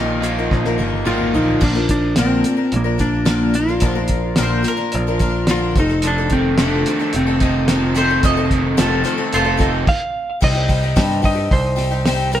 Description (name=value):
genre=folk rock and heartland rock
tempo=109 BPM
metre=4/4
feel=straight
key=unclear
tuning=A4 = 440 Hz
part: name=clean lap steel guitar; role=melody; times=0.0-12.4 s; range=Bb3 to F5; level=-21 LUFS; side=equal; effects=digital delay
part: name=picked twelve-string acoustic guitar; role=accompaniment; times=0.0-12.4 s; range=Bb2 to Bb4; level=-22 LUFS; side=left 4 dB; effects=none
part: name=crunchy overdriven guitar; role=riff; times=0.0-1.6, 6.0-9.9 s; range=F2 to F4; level=-23 LUFS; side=right 2 dB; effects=none
part: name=picked electric bass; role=bass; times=0.0-12.4 s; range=F1 to G2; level=-21 LUFS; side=right 1 dB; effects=none
part: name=cloth-damped thuddy drum kit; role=drums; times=0.2-12.4 s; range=crash cymbal, hi-hat, kick drum, snare drum, toms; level=-20 LUFS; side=right 1 dB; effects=none
part: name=mandolin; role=second line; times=4.4-9.7 s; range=F4 to Eb5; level=-21 LUFS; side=right 1 dB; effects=none
room=moderate stone room reverb, RT60 1.1 s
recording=band playing live in one room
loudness=-15 LUFS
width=side -11 dB against mid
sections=0.0-1.6 A section; 1.6-10.4 B section; 10.4-12.4 C section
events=drum fill 0.5-1.6; stop 9.9-10.4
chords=0.0 Bbsus4; 1.6 Bb; 5.8 F7; 10.4 Cm